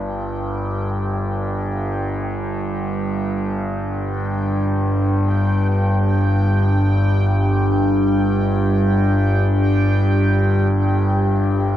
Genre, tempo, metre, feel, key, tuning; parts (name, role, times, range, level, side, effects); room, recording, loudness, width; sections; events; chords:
dark ambient drone; free time; A4 = 439 Hz
overtone-sweeping drone; drone; 0.0-11.8 s; G1 to G2; -18 LUFS; equal; chorus, built-in reverb
bubbling stepped-filter texture; texture; 0.0-11.8 s; G5; -30 LUFS; right 2 dB; chorus, built-in reverb
deep dark ambient pad; sustained chords; 1.7-11.8 s; G3 to G5; -23 LUFS; equal; chorus, built-in reverb
wet cathedral reverb, RT60 5.4 s; worn, warbling old tape, cassette tape, warbly pitch drift; -17 LUFS; side -12 dB against mid
0.0-11.8 A section
0.0 G5